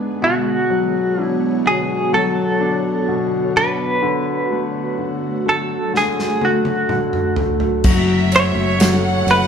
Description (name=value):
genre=pop ballad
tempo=63 BPM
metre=4/4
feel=straight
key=F# minor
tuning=A4 = 440 Hz
part: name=clear concert grand piano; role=accompaniment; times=0.0-9.5 s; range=G#2 to D4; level=-21 LUFS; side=left 5 dB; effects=none
part: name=ethereal airy pad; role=sustained chords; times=0.0-9.5 s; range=D3 to C#6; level=-23 LUFS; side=right 3 dB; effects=ensemble chorus, built-in reverb
part: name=direct-recorded clean electric guitar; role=melody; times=0.2-9.5 s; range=F#4 to C#5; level=-19 LUFS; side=right 2 dB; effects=tremolo
part: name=loose indie drum kit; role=drums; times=6.0-9.5 s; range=crash cymbal, kick drum, ride cymbal, snare drum, toms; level=-21 LUFS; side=right 1 dB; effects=none
part: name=sustaining fretless electric bass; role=bass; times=7.8-9.5 s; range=F#1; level=-20 LUFS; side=right 1 dB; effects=none
part: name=clear studio violin section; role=second line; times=7.9-9.5 s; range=E5 to F#5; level=-24 LUFS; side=right 2 dB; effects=none
part: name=tambourine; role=percussion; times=7.9-9.5 s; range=none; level=-34 LUFS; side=right 5 dB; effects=none
room=wet stone room reverb, RT60 1.0 s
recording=band playing live in one room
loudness=-15 LUFS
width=side -7 dB against mid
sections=0.0-7.8 A section; 7.8-9.5 B section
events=drum fill 5.9-7.8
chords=0.2 Bmadd9; 4.0 D; 7.8 F#m7